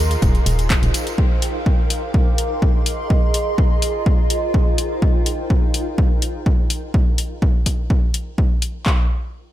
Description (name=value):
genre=piano house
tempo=125 BPM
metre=4/4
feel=straight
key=unclear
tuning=A4 = 440 Hz
part: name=organ-like FM bass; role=bass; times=0.0-0.9 s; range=Eb1 to Eb2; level=-19 LUFS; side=equal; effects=sidechain pumping
part: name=granular cloud pad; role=texture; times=0.0-5.0 s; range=Ab4 to C6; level=-25 LUFS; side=right 1 dB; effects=built-in reverb, sidechain pumping
part: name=house drum kit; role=drums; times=0.1-8.7 s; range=handclaps, hi-hat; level=-25 LUFS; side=left 3 dB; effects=none
part: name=tambourine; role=percussion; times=0.1-1.2 s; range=none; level=-33 LUFS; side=right 4 dB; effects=none
part: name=punchy analog drum machine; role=drums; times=0.2-9.0 s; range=handclaps, kick drum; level=-17 LUFS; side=equal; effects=none
room=light reverb, digital ambience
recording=none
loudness=-16 LUFS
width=side -13 dB against mid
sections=0.0-8.9 A section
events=filter sweep on FM bass 0.0-1.2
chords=0.0 Ebadd9; 1.2 Bb; 1.9 Ab; 3.1 Fm7; 3.8 Ebadd9; 5.0 N.C.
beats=0.22 0.70 | 1.18 1.66 2.14 2.62 | 3.10 3.58 4.06 4.54 | 5.02 5.50 5.98 6.46 | 6.94 7.42 7.90 8.38 | 8.86